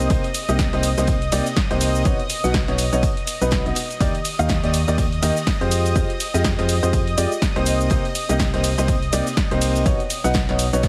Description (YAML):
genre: piano house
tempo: 123 BPM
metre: 4/4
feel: swing 58% on 16ths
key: unclear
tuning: A4 = 440 Hz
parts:
  - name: analog string pad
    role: sustained chords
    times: 0.0-10.9 s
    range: Eb5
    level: -32 LUFS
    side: equal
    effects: ensemble chorus, sidechain pumping
  - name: clear baby grand piano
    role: riff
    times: 0.0-10.9 s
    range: B2 to F#5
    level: -25 LUFS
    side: equal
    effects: sidechain pumping, tape echo
  - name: organ-like FM bass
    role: bass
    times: 0.0-10.8 s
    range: B1 to F2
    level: -25 LUFS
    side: equal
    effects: sidechain pumping
  - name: punchy analog drum machine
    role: drums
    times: 0.0-10.9 s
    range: cabasa, hi-hat, ride cymbal, snare drum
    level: -29 LUFS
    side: equal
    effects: none
  - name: electronic kick drum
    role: drums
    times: 0.1-10.9 s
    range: none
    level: -25 LUFS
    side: equal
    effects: none
  - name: raw garage drum kit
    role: drums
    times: 0.1-10.9 s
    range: hi-hat, snare drum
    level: -40 LUFS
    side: equal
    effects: none
room: studio ambience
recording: heavily compressed radio sound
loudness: -20 LUFS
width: mono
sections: 0.0-10.9 A section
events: none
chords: 0.0 Cm7; 2.1 Badd9; 4.0 Ebmaj7; 5.7 Fmadd9; 7.7 Cm7; 9.9 Badd9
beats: | 0.10 0.59 1.08 1.56 | 2.05 2.54 3.03 3.52 | 4.00 4.49 4.98 5.47 | 5.96 6.44 6.93 7.42 | 7.91 8.39 8.88 9.37 | 9.86 10.35 10.83